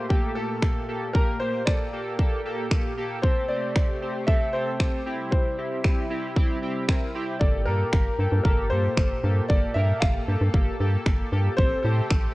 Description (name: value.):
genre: dance-pop.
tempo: 115 BPM.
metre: 4/4.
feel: straight.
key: G dorian.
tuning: A4 = 440 Hz.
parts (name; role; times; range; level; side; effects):
warm concert grand piano; melody; 0.0-12.3 s; G4 to F5; -29 LUFS; equal; none.
chorused polysynth; accompaniment; 0.0-12.3 s; Bb3 to C5; -31 LUFS; equal; sidechain pumping.
lush unison pad; sustained chords; 0.0-12.3 s; Bb2 to A4; -35 LUFS; equal; chorus, sidechain pumping.
pop drum kit; drums; 0.1-12.2 s; finger snaps, kick drum; -22 LUFS; equal; none.
organ-like FM bass; bass; 7.4-12.3 s; G1 to A2; -24 LUFS; equal; sidechain pumping.
room: little or no reverb.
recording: worn, warbling old tape, cassette tape, warbly pitch drift.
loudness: -22 LUFS.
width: side -19 dB against mid.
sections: 0.0-12.3 A section.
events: none.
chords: 0.0 Gmadd9; 3.2 Am7; 5.1 C; 7.4 Gmadd9; 11.6 Am7.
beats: 0.10 0.63 | 1.15 1.67 2.19 2.71 | 3.24 3.76 4.28 4.80 | 5.32 5.84 6.37 6.89 | 7.41 7.93 8.45 8.97 | 9.50 10.02 10.54 11.06 | 11.58 12.11.